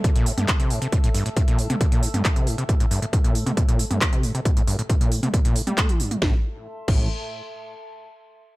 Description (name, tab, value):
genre	driving peak-time techno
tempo	136 BPM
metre	4/4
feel	straight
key	A phrygian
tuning	A4 = 440 Hz
part	overdriven acid bass	riff	0.0-7.1 s	G2 to A3	-25 LUFS	equal	sidechain pumping, tape echo
part	electronic kick drum	drums	0.0-7.0 s	none	-20 LUFS	equal	none
part	techno drum kit	drums	0.0-7.0 s	crash cymbal, handclaps, hi-hat, snare drum, toms	-27 LUFS	right 1 dB	none
part	warbly tape-like pad	texture	0.0-7.9 s	A4 to E6	-38 LUFS	equal	chorus, built-in reverb, sidechain pumping
part	dark detuned saw bass	bass	6.2-7.1 s	A1	-30 LUFS	equal	tube saturation, sidechain pumping
room	little or no reverb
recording	none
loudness	-19 LUFS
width	side -20 dB against mid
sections	0.0-6.2 A section; 6.2-8.0 B section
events	fade-out on ambient pad 0.0-6.2; filter sweep on acid bass 0.0-6.2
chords	0.0 A5; 6.2 Am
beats	0.04 0.48 | 0.93 1.37 1.81 2.25 | 2.69 3.13 3.57 4.01 | 4.45 4.89 5.34 5.78 | 6.22 6.66 7.10 7.54